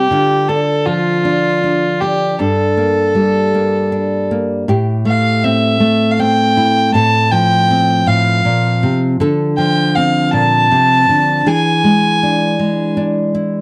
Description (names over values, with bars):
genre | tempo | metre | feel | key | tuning
acoustic folk duo or small band | 53 BPM (dotted quarters) | 6/8 | straight | unclear | A4 = 440 Hz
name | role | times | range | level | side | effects
warm fiddle | melody | 0.0-13.0 s | F4 to A5 | -17 LUFS | equal | slapback echo
nylon-string guitar | accompaniment | 0.0-13.6 s | G2 to A4 | -17 LUFS | equal | none
room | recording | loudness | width
light reverb | dry, close 1970s-style studio recording | -14 LUFS | mono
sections
0.0-4.7 A section; 4.7-13.6 B section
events
none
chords
0.1 Dm; 2.4 Gmadd9; 4.7 Am7; 6.9 F/A; 9.2 Dm7; 11.5 E7